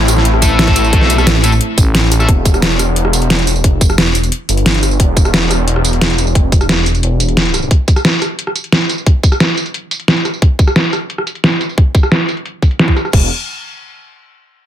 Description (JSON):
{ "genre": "dark technical drum and bass", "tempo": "177 BPM", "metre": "4/4", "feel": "straight", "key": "E phrygian", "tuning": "A4 = 440 Hz", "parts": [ { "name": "sweeping resonant pad", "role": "sustained chords", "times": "0.0-2.2 s", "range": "A3 to E4", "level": "-21 LUFS", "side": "equal", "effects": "chorus, sidechain pumping" }, { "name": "wide detuned saw bass", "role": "bass", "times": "0.0-7.7, 13.1-13.3 s", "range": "E1 to B1", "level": "-14 LUFS", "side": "equal", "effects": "chorus" }, { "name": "dubstep drum kit", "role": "drums", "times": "0.1-13.2 s", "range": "crash cymbal, hi-hat, rim click, snare drum, tambourine", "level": "-14 LUFS", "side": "equal", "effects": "overdrive, low-pass filter on hats, low-pass filter on perc, low-pass filter on snare, low-pass filter on cymbals, low-pass filter on room" }, { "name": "distorted electric guitar", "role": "stabs", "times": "0.4-2.3 s", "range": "A3 to A4", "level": "-18 LUFS", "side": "left 3 dB", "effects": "distortion, ping-pong delay" }, { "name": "electronic kick drum", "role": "drums", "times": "0.4-13.2 s", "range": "none", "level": "-10 LUFS", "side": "equal", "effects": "none" }, { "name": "growling FM bass", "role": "bass", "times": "1.8-2.3 s", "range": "A1", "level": "-12 LUFS", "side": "equal", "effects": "tube saturation" } ], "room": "digital ambience", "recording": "dense, heavily limited modern master", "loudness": "-10 LUFS", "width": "side -11 dB against mid", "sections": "0.0-2.3 A section; 2.3-13.1 B section; 13.1-14.5 C section", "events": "drop 0.0-2.3; kick drops out 1.9-2.3; filter sweep on drum 2.3-13.1", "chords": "0.0 Am; 2.3 Em; 7.7 N.C." }